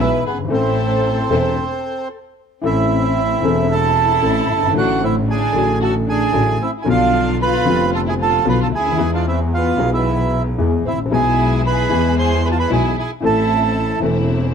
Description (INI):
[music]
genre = tango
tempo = 113 BPM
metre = 4/4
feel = rubato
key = A harmonic minor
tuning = A4 = 442 Hz
[part]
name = bandoneon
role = melody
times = 0.0-14.0 s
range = B3 to C6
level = -19 LUFS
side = right 5 dB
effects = plate reverb
[part]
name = dark studio violin section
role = second line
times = 0.0-14.0 s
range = B3 to B4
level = -24 LUFS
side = left 2 dB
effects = none
[part]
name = warm concert grand piano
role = accompaniment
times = 0.0-14.5 s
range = E1 to A4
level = -20 LUFS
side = left 4 dB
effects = none
[part]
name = warm studio string section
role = stabs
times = 0.0-1.5, 11.1-14.5 s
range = G#3 to E4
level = -28 LUFS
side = equal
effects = none
[part]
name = rich double bass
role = bass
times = 0.0-14.5 s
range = E1 to E2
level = -21 LUFS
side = right 1 dB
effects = none
[sound]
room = light reverb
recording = none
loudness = -15 LUFS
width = side -7 dB against mid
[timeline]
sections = 0.0-2.6 A section; 2.6-14.5 A section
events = stop 1.6-2.6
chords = 0.0 E; 0.5 Am; 4.8 D/A; 6.9 Bdim; 9.0 E; 13.2 Am